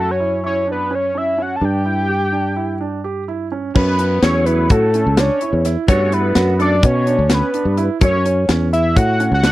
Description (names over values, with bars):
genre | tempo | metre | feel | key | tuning
progressive instrumental, band music in an uneven meter | 254 BPM (eighths) | 9/8 | straight | F# phrygian | A4 = 440 Hz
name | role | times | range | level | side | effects
fat analog lead | melody | 0.0-9.5 s | A4 to A5 | -19 LUFS | left 1 dB | chorus
warm concert grand piano | arpeggios | 0.0-9.5 s | C#4 to G4 | -23 LUFS | right 6 dB | none
sustaining fretless electric bass | bass | 0.0-9.5 s | C#2 to B2 | -18 LUFS | equal | none
tight funk drum kit | drums | 3.8-9.5 s | crash cymbal, hi-hat, kick drum, snare drum | -16 LUFS | left 1 dB | none
percussive tonewheel organ | accompaniment | 4.2-8.2 s | F#3 to A4 | -24 LUFS | left 2 dB | chorus vibrato, fast rotary speaker
room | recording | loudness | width
little or no reverb | dry, close 1970s-style studio recording | -14 LUFS | side -16 dB against mid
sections
0.0-3.8 A section; 3.8-9.5 B section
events
none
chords
0.0 F#5; 1.6 Em7/G; 3.8 F#m; 5.9 Gmaj7; 8.0 F#m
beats
0.20 0.44 0.68 0.92 1.15 1.39 | 1.63 1.86 2.10 2.34 2.58 2.81 3.05 3.29 3.52 | 3.76 4.00 4.23 4.47 4.71 4.94 5.18 5.42 5.65 | 5.89 6.12 6.36 6.60 6.83 7.07 7.31 7.54 7.78 | 8.02 8.25 8.49 8.72 8.96 9.20 9.44